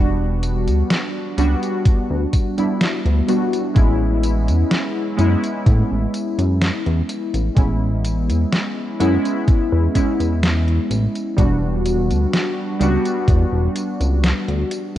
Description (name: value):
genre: vaporwave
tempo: 63 BPM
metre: 4/4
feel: straight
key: A major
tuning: A4 = 437 Hz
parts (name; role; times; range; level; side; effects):
- warbly lo-fi synth keys; accompaniment; 0.0-15.0 s; G3 to F#4; -21 LUFS; equal; analog chorus, analog delay
- chorused synth bass; bass; 0.0-15.0 s; E1 to A2; -18 LUFS; equal; tube saturation
- detuned 8-bit digital drum machine; drums; 0.4-14.9 s; hi-hat, snare drum, tambourine; -24 LUFS; equal; overdrive, vintage 12-bit sampler grit
- electronic kick drum; drums; 1.9-13.5 s; none; -16 LUFS; equal; vintage 12-bit sampler grit
room: light reverb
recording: worn, warbling old tape, cassette tape, warbly pitch drift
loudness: -16 LUFS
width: side -13 dB against mid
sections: 0.0-15.0 A section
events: none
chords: 0.0 Em9; 3.8 Amaj9; 11.4 Em9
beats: 0.90 1.85 2.81 | 3.76 4.71 5.66 6.62 | 7.57 8.52 9.47 10.43 | 11.38 12.33 13.28 14.23